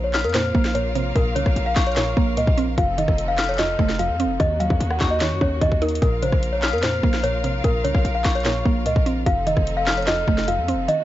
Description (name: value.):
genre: hip hop, trap.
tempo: 148 BPM.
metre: 4/4.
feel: half-time.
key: Bb harmonic minor.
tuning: A4 = 441 Hz.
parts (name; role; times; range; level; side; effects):
small celesta; melody; 0.0-11.0 s; Bb4 to Gb5; -24 LUFS; left 1 dB; tape echo.
mallet-like synth pluck; accompaniment; 0.0-11.0 s; F2 to Eb4; -26 LUFS; right 4 dB; chorus.
bright symphonic string section; sustained chords; 0.0-11.0 s; Eb3 to F5; -31 LUFS; left 1 dB; none.
hard-hitting 808-style bass; bass; 0.0-10.9 s; F1 to Gb2; -25 LUFS; equal; none.
dark detuned synth bell; second line; 0.1-10.4 s; Db6 to F6; -30 LUFS; left 5 dB; chorus, tape echo.
trap drum kit; drums; 0.1-11.0 s; handclaps, hi-hat, kick drum, rim click, snare drum; -22 LUFS; equal; none.
room: little or no reverb.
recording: nothing above 7.6 kHz.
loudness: -18 LUFS.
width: side -14 dB against mid.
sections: 0.0-11.0 A section.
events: kick muted 10.9.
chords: 0.0 Bbmadd9; 2.8 F7; 4.4 Ebm7; 6.0 Bbmadd9; 9.3 F7.